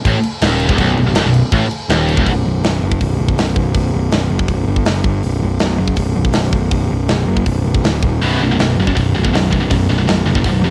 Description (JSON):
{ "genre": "heavy metal", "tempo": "162 BPM", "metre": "4/4", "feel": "straight", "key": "B major", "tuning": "A4 = 440 Hz", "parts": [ { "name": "heavy high-gain guitar", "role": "riff", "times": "0.1-2.3, 8.2-10.7 s", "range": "B1 to B2", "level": "-19 LUFS", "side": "equal", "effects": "distortion, cassette tape" }, { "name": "fuzz picked electric bass", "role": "bass", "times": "0.1-10.7 s", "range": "B0 to A1", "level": "-18 LUFS", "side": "equal", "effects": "overdrive" }, { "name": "tight metal drum kit", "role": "drums", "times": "0.1-10.5 s", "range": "crash cymbal, hi-hat, kick drum, snare drum", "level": "-21 LUFS", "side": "equal", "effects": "cassette tape" } ], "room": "small room ambience", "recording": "home recording on cassette", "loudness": "-15 LUFS", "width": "mono", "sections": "0.0-2.3 A section; 2.3-10.7 B section", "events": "none", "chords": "0.0 B; 2.3 B5; 4.9 N.C.; 5.2 B5; 8.0 N.C.; 8.2 B5", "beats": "0.04 0.41 | 0.78 1.15 1.52 1.90 | 2.27 2.64 3.01 3.38 | 3.75 4.12 4.49 4.87 | 5.24 5.61 5.98 6.35 | 6.72 7.10 7.47 7.84 | 8.21 8.58 8.96 9.33 | 9.70 10.07 10.44" }